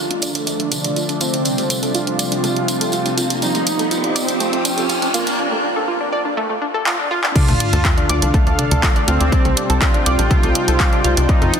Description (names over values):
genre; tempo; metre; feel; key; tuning
melodic techno; 122 BPM; 4/4; straight; D phrygian; A4 = 440 Hz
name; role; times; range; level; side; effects
soft supersaw; melody; 0.0-11.6 s; Bb3 to F4; -23 LUFS; right 1 dB; sidechain pumping, low-pass filter, digital delay
lush unison pad; sustained chords; 0.0-11.6 s; C3 to A5; -27 LUFS; right 1 dB; chorus, sidechain pumping
tight sequenced synth; arpeggios; 0.0-11.6 s; A3 to D6; -24 LUFS; equal; chorus, cassette tape, sidechain pumping, tape echo
analog synth brass; stabs; 0.0-11.6 s; C3 to F4; -28 LUFS; left 2 dB; chorus, sidechain pumping, tape echo
analog drone; drone; 0.0-11.6 s; F3 to A3; -33 LUFS; equal; none
riser and sub drop; sound effects; 0.0-9.3 s; none; -26 LUFS; equal; none
warbly tape-like pad; texture; 0.0-11.6 s; C4 to G5; -27 LUFS; right 2 dB; chorus, built-in reverb, phaser, sidechain pumping
house drum kit; drums; 0.1-11.6 s; crash cymbal, handclaps, hi-hat, toms; -22 LUFS; right 1 dB; overdrive, high-pass filter on hats, high-pass filter on toms, high-pass filter on snare, high-pass filter on cymbals, high-pass filter on room
tambourine; percussion; 0.2-5.4 s; none; -27 LUFS; right 1 dB; none
electronic kick drum; drums; 7.4-11.4 s; none; -16 LUFS; equal; overdrive
tight sequencer bass; bass; 7.5-11.5 s; Bb1 to F2; -18 LUFS; equal; sidechain pumping
room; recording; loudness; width
moderate huge ambient reverb, RT60 6.7 s; dense, heavily limited modern master, high-pass filter; -15 LUFS; side -7 dB against mid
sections
0.0-7.4 A section; 7.4-11.6 B section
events
build-up 0.0-7.4; riser 0.0-5.4; filter sweep on synth arpeggio sound 0.0-7.4; filter sweep on supersaw synth 0.0-7.4; filter sweep on analog polysynth 0.0-7.4; filter sweep 0.0-7.4; drum fill 6.9-7.4; drop 7.4-11.6; impact 7.4-9.3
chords
0.0 Dm; 1.5 C5; 3.4 F; 5.4 Asus4; 7.4 Dm; 9.3 Cm